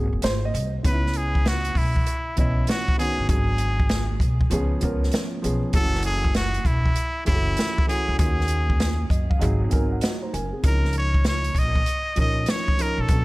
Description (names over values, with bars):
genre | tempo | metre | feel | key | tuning
hip hop, jazz-hop | 98 BPM | 4/4 | swing 64% on 16ths | C# dorian | A4 = 440 Hz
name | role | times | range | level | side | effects
dark concert grand piano | accompaniment | 0.0-13.2 s | D#3 to A#5 | -29 LUFS | right 1 dB | none
upright bass | bass | 0.0-13.2 s | E1 to F#2 | -25 LUFS | equal | none
open jazz drum kit | drums | 0.2-13.2 s | hi-hat, kick drum, snare drum | -23 LUFS | equal | none
trumpet with straight mute | melody | 0.9-13.2 s | E4 to D#5 | -27 LUFS | equal | tape echo
room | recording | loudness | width
small room ambience | none | -20 LUFS | side -20 dB against mid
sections
0.8-13.2 A section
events
grand piano fill 8.8-10.6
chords
0.0 G#7; 0.8 C#m9; 3.3 G#m7b5; 4.5 C#7; 5.7 F#m7; 8.2 D#m7; 9.4 G#7; 10.6 C#69